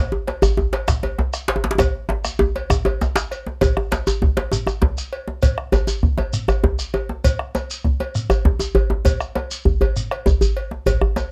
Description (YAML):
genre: west african traditional, West African drum ensemble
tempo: 132 BPM (dotted quarters)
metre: 12/8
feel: straight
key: none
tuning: none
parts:
  - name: djembe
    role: percussion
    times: 0.1-11.2 s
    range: none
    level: -22 LUFS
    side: equal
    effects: none
  - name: cowbell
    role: percussion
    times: 0.3-11.3 s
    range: none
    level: -30 LUFS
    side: equal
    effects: none
  - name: djembe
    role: percussion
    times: 0.3-11.3 s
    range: none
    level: -27 LUFS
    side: equal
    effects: none
  - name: bombo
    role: percussion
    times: 0.4-11.2 s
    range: none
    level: -23 LUFS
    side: equal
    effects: none
  - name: shekere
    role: percussion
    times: 0.4-11.2 s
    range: none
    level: -30 LUFS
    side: equal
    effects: none
room: little or no reverb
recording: close, detailed microphones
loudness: -20 LUFS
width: mono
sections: 0.0-3.6 A section; 3.6-11.3 B section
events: drum fill 1.8-3.6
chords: none